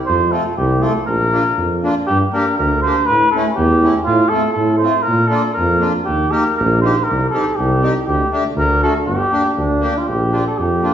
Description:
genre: alpine folk, alpine dance band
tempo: 120 BPM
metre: 2/4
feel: rubato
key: G minor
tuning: A4 = 436 Hz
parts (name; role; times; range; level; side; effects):
- warm flugelhorn; melody; 0.1-10.9 s; D4 to C5; -17 LUFS; right 1 dB; none
- warm tuba; bass; 0.1-10.9 s; G1 to Bb2; -18 LUFS; right 1 dB; none
- accordion; accompaniment; 0.3-10.9 s; A3 to G4; -21 LUFS; left 1 dB; none
room: wet recital hall reverb, RT60 1.6 s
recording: recorded in a church or concert hall, small room ambience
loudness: -14 LUFS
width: side -9 dB against mid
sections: 0.0-2.1 A section; 2.1-10.1 B section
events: none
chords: 0.1 F; 1.1 Bb; 2.1 Gm; 3.1 A; 4.1 F/A; 5.1 Bb; 6.1 Eb; 7.1 Cm; 8.1 Dsus4; 8.6 D; 9.1 Gm; 10.1 Bb

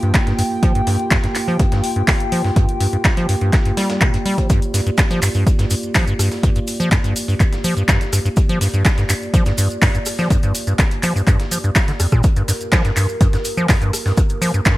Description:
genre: acid house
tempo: 124 BPM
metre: 4/4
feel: straight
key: G minor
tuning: A4 = 439 Hz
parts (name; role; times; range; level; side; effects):
- dark analog pad; sustained chords; 0.0-14.8 s; Bb3 to G5; -25 LUFS; equal; lush chorus, sidechain pumping
- liquid acid bass; riff; 0.0-14.8 s; F2 to G3; -19 LUFS; equal; chorus, sidechain pumping, digital delay
- punchy analog drum machine; drums; 0.0-14.8 s; handclaps, hi-hat, rim click; -22 LUFS; equal; overdrive
- dusty soul sampler-style drum kit; drums; 0.1-14.8 s; hi-hat, snare drum; -31 LUFS; equal; overdrive, high-pass filter on hats, high-pass filter on snare, high-pass filter on room
- electronic kick drum; drums; 0.1-14.8 s; none; -16 LUFS; equal; overdrive
- maracas; percussion; 4.5-14.8 s; none; -28 LUFS; right 2 dB; none
room: light reverb, digital ambience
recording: bright 1980s-style digital production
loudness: -14 LUFS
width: side -17 dB against mid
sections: 0.0-14.8 A section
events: none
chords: 0.0 Gm7

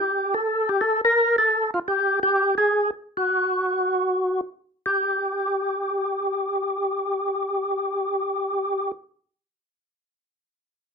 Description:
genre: jazz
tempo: 145-171 BPM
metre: 4/4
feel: swing 64% on 8ths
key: unclear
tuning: A4 = 440 Hz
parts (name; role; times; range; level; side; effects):
- percussive tonewheel organ; solo; 0.0-8.9 s; F4 to Bb4; -21 LUFS; equal; slow rotary speaker, overdrive, chorus vibrato
room: moderate club reverb, RT60 0.5 s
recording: close, detailed microphones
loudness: -21 LUFS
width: side -5 dB against mid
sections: 0.0-4.8 A section; 4.8-8.2 B section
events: slowing down 1.9-4.8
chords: none

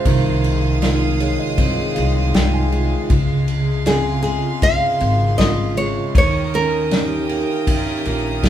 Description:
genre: acoustic folk-pop ballad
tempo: 79 BPM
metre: 4/4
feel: straight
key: unclear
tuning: A4 = 439 Hz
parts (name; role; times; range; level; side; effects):
- nylon-string guitar; melody; 0.0-8.5 s; Ab4 to F5; -21 LUFS; equal; none
- mellow tine electric piano; accompaniment; 0.0-8.5 s; C3 to Ab5; -23 LUFS; equal; medium stereo tremolo
- clear studio string section; sustained chords; 0.0-8.5 s; Ab4 to Eb6; -28 LUFS; left 2 dB; none
- picked plugged-in steel-string acoustic guitar; arpeggios; 0.0-8.5 s; Eb3 to G4; -25 LUFS; right 4 dB; none
- upright bass; bass; 0.1-8.5 s; Ab1 to Eb2; -21 LUFS; equal; none
- unplugged drum kit; drums; 0.1-8.5 s; kick drum, ride cymbal, snare drum; -21 LUFS; left 1 dB; none
room: wet large studio reverb, RT60 0.9 s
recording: band playing live in one room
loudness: -16 LUFS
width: side -11 dB against mid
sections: 0.0-8.5 A section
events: none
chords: 0.1 Fm7/C; 3.1 Dbmaj7; 6.2 Eb7

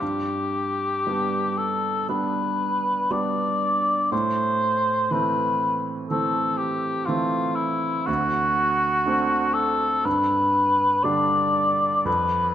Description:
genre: classical, romantic duo for cor anglais and grand piano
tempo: 60 BPM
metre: 4/4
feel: rubato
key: unclear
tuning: A4 = 440 Hz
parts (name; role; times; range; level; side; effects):
- mellow cor anglais; melody; 0.0-12.5 s; E4 to D5; -22 LUFS; left 1 dB; none
- clear concert grand piano; accompaniment; 0.0-12.5 s; D2 to D4; -27 LUFS; right 3 dB; none
room: moderate scoring stage reverb, RT60 1.9 s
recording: none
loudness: -20 LUFS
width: side -10 dB against mid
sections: 0.0-12.5 A section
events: none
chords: 0.0 G; 4.1 Am; 8.1 D7; 10.1 G

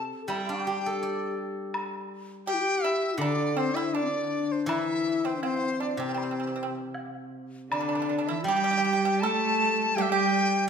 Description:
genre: chinese traditional, Chinese chamber ensemble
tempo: 81 BPM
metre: 4/4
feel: rubato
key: unclear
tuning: A4 = 439 Hz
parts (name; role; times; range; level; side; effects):
- dizi; melody; 0.0-10.7 s; C5 to A5; -29 LUFS; left 2 dB; none
- mellow low xiao; second line; 0.0-10.7 s; C4 to A4; -31 LUFS; left 4 dB; none
- steel-string zither; accompaniment; 0.0-10.7 s; C3 to D5; -34 LUFS; equal; none
- pipa; second line; 0.3-10.7 s; C4 to A4; -32 LUFS; right 5 dB; none
- woodblock; percussion; 0.3-10.1 s; none; -37 LUFS; left 1 dB; none
- rich cello; second line; 7.7-10.7 s; D3 to A3; -30 LUFS; right 8 dB; none
room: wet recital hall reverb, RT60 1.5 s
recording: none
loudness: -25 LUFS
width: side -7 dB against mid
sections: 0.0-7.7 A section; 7.7-10.7 B section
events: none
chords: none

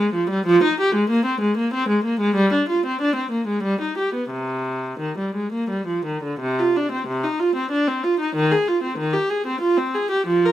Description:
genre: classical, baroque-style suite movement for unaccompanied viola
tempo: 83-96 BPM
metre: 3/4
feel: rubato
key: C minor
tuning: A4 = 439 Hz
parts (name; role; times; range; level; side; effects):
- rich viola; solo; 0.0-10.5 s; C3 to Bb4; -19 LUFS; equal; none
room: light reverb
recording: minimal, uncompressed stereo recording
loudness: -19 LUFS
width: side -12 dB against mid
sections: 0.0-6.4 A section; 6.4-10.5 B section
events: none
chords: none

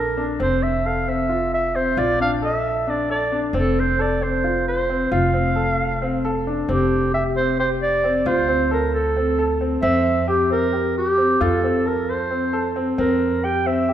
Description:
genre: contemporary instrumental, chamber music in an uneven meter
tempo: 267 BPM (eighths)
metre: 7/8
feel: straight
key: F major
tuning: A4 = 440 Hz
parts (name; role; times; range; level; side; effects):
- warm clarinet; melody; 0.0-13.9 s; G4 to G5; -21 LUFS; right 2 dB; none
- warm grand piano; arpeggios; 0.0-13.9 s; C4 to A4; -22 LUFS; left 1 dB; none
- upright bass; bass; 0.0-13.9 s; F1 to F2; -26 LUFS; left 1 dB; none
room: wet concert hall reverb, RT60 2.0 s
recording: recorded in a church or concert hall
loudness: -18 LUFS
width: side -10 dB against mid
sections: 0.0-6.7 A section; 6.7-13.9 B section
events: none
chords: 0.4 Fmaj7; 2.0 Bbmaj7; 3.5 F; 6.7 C5/F; 8.3 Dm7; 9.8 C7/F; 11.4 F; 13.0 C7/F

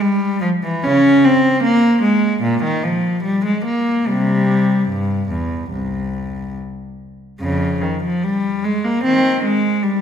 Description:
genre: classical, baroque-style suite movement for unaccompanied cello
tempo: 74 BPM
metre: 4/4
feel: rubato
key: unclear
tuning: A4 = 443 Hz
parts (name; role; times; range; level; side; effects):
- rich cello; solo; 0.0-10.0 s; C2 to Db4; -15 LUFS; equal; none
room: wet concert hall reverb, RT60 2.1 s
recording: minimal, uncompressed stereo recording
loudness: -15 LUFS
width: side -8 dB against mid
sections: 0.0-10.0 A section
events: none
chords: none

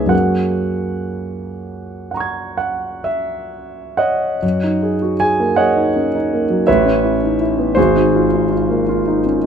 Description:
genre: classical, impressionist solo piano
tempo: 40-55 BPM (dotted quarters)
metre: 9/8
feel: rubato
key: F# mixolydian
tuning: A4 = 441 Hz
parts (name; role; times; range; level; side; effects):
- warm concert grand piano; solo; 0.0-9.5 s; G#1 to G#6; -15 LUFS; right 1 dB; none
room: moderate recital hall reverb, RT60 1.4 s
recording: close, detailed microphones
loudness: -14 LUFS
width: side -7 dB against mid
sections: 0.0-4.4 A section; 4.4-9.5 B section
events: none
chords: 0.1 F#69; 6.7 Aadd9; 7.8 G#13

